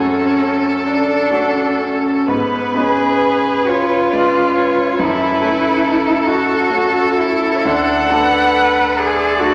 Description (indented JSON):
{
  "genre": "classical, slow romantic movement for piano quartet",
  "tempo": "40-48 BPM (dotted quarters)",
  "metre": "6/8",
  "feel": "rubato",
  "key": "F# minor",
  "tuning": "A4 = 440 Hz",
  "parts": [
    { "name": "clear violin", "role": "melody", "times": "0.0-9.5 s", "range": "A4 to B4", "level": "-23 LUFS", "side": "equal", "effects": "none" },
    { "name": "rich cello", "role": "second line", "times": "0.0-9.5 s", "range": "B3 to B4", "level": "-19 LUFS", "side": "equal", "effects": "none" },
    { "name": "rich violin", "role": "second line", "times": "0.0-9.5 s", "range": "G#4 to F#5", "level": "-23 LUFS", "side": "equal", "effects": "none" },
    { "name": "clear concert grand piano", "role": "accompaniment", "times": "0.0-9.5 s", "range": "D2 to B4", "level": "-21 LUFS", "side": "equal", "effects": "none" }
  ],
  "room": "wet recital hall reverb, RT60 1.6 s",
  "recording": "vinyl crackle",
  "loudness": "-15 LUFS",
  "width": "mono",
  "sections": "0.0-9.5 A section",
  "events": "none",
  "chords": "0.0 F#m; 2.3 C#7/G#; 5.0 F#m; 7.6 D"
}